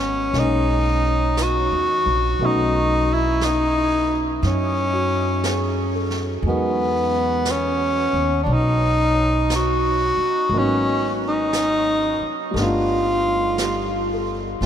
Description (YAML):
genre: jazz ballad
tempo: 59 BPM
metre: 4/4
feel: swing 67% on 8ths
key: G# minor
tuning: A4 = 440 Hz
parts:
  - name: clear tenor saxophone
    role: melody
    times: 0.0-14.3 s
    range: B3 to F#4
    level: -20 LUFS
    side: equal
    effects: none
  - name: warm grand piano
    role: accompaniment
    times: 0.0-14.7 s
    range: F#3 to D#5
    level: -27 LUFS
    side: equal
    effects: none
  - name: upright bass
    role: bass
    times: 0.0-14.7 s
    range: F#1 to F#2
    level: -24 LUFS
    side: equal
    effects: none
  - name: vintage brush drum kit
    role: drums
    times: 0.3-14.7 s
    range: brushed snare drum, hi-hat, snare drum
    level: -33 LUFS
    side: right 2 dB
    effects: none
room: wet huge ambient reverb, RT60 8.6 s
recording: in a vast, echoing space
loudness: -18 LUFS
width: side -9 dB against mid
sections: 0.0-14.7 A section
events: none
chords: 0.0 G#m9; 2.4 B9; 6.4 Emaj9#11; 10.5 G#m11; 12.5 G9